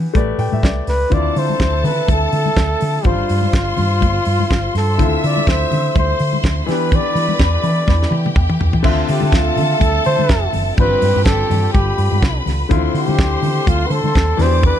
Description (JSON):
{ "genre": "disco", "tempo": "124 BPM", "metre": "4/4", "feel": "swing 56% on 16ths", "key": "D dorian", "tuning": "A4 = 440 Hz", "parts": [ { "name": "warm baby grand piano", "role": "accompaniment", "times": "0.0-14.8 s", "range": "D3 to G5", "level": "-24 LUFS", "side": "left 6 dB", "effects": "none" }, { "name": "hollow-body short-scale fingered electric bass", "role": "bass", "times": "0.0-14.7 s", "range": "F1 to E3", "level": "-18 LUFS", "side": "equal", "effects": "none" }, { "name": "damped 70s drum kit", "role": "drums", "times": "0.1-14.8 s", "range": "crash cymbal, hi-hat, kick drum, snare drum, toms", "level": "-17 LUFS", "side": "right 1 dB", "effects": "none" }, { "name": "congas", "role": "percussion", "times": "0.1-14.8 s", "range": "none", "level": "-26 LUFS", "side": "left 6 dB", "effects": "none" }, { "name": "breathy flugelhorn", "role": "melody", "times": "0.9-14.8 s", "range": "F4 to D5", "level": "-20 LUFS", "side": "equal", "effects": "slapback echo" }, { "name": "clear symphonic string section", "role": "second line", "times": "1.1-14.8 s", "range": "G4 to E6", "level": "-24 LUFS", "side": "left 3 dB", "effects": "none" }, { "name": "mellow French horn section", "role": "sustained chords", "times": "1.1-14.8 s", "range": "D3 to E5", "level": "-27 LUFS", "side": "right 3 dB", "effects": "none" } ], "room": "little or no reverb", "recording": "dark, warm production", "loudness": "-14 LUFS", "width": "side -10 dB against mid", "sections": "0.0-1.1 A section; 1.1-8.9 B section; 8.9-14.8 C section", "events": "grand piano fill 0.1-1.1; drum fill 7.9-8.9", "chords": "0.1 A9sus4; 1.1 Dm9; 3.1 G7sus4; 5.0 Dm9; 6.7 Em7; 8.9 Dm9; 10.8 G7sus4; 12.7 Dm9", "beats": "0.15 0.63 | 1.12 1.60 2.08 2.57 | 3.05 3.54 4.02 4.50 | 4.99 5.47 5.95 6.44 | 6.92 7.40 7.89 8.37 | 8.85 9.33 9.82 10.30 | 10.78 11.26 11.75 12.23 | 12.71 13.19 13.67 14.16 | 14.64" }